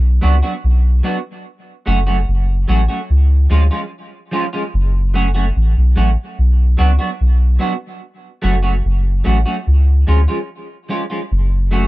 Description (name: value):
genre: roots reggae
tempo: 73 BPM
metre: 4/4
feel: straight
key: F# harmonic minor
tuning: A4 = 440 Hz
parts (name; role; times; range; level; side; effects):
- soft dub sub bass; bass; 0.0-11.9 s; F#1 to D2; -12 LUFS; equal; none
- semi-hollow electric guitar; accompaniment; 0.2-11.8 s; E#3 to F#4; -21 LUFS; right 2 dB; lush chorus, tape echo
room: little or no reverb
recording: dry, close 1970s-style studio recording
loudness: -13 LUFS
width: side -18 dB against mid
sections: 0.0-11.9 A section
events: none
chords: 0.0 Bm; 1.4 F#m; 3.1 C#; 4.7 F#m; 6.4 Bm; 8.0 F#m; 9.7 C#; 11.3 F#m